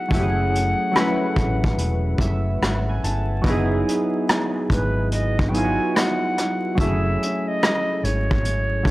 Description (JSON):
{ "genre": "lo-fi hip hop", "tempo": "72 BPM", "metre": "4/4", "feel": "swing 66% on 16ths", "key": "unclear", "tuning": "A4 = 440 Hz", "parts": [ { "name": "bright silver concert flute", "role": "melody", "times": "0.0-8.9 s", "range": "B4 to G#5", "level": "-26 LUFS", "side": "equal", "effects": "low-pass filter" }, { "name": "warm analog keys", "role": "accompaniment", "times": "0.0-8.9 s", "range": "F#3 to A5", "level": "-24 LUFS", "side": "equal", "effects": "chorus, low-pass filter" }, { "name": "vintage muted fingered electric bass", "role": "bass", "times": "0.1-8.9 s", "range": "E1 to A1", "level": "-23 LUFS", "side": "equal", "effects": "none" }, { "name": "vintage brush drum kit", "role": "drums", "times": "0.1-8.9 s", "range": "hi-hat, kick drum, rim click", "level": "-23 LUFS", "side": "equal", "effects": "none" } ], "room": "little or no reverb", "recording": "dry, gritty hardware recording, vinyl crackle", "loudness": "-19 LUFS", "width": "side -18 dB against mid", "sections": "0.0-3.4 A section; 3.4-8.9 B section", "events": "synth keys fill 1.8-3.4", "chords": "0.1 F#m9; 3.4 Emaj9/F#; 6.8 F#m9" }